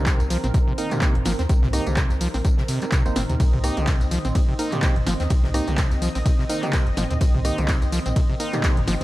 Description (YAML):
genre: acid house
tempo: 126 BPM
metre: 4/4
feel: swing 56% on 16ths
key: C phrygian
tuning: A4 = 438 Hz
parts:
  - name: warm analog pad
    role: sustained chords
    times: 0.0-9.0 s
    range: Eb3 to Eb5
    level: -30 LUFS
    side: equal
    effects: chorus, sidechain pumping
  - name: acid bass, saw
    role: riff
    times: 0.0-9.0 s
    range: C2 to Eb4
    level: -27 LUFS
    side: equal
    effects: overdrive, tape echo
  - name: percussive organ stab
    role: stabs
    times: 0.0-8.8 s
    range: Bb3 to C5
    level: -32 LUFS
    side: right 4 dB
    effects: chorus, tape echo
  - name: warm sub bass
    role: bass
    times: 0.0-9.0 s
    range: G1 to Eb2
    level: -25 LUFS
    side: equal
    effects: tube saturation, sidechain pumping
  - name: electronic kick drum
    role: drums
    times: 0.1-8.7 s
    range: none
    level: -20 LUFS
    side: equal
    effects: none
  - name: punchy analog drum machine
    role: drums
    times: 0.1-9.0 s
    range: handclaps, hi-hat, ride cymbal, rim click, snare drum, tambourine, toms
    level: -28 LUFS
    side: equal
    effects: none
  - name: unplugged drum kit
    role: drums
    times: 0.1-9.0 s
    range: hi-hat, snare drum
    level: -41 LUFS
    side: left 2 dB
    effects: none
room: digital ambience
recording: dark, warm production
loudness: -19 LUFS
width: side -17 dB against mid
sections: 0.0-9.0 A section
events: none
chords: 0.0 Cm7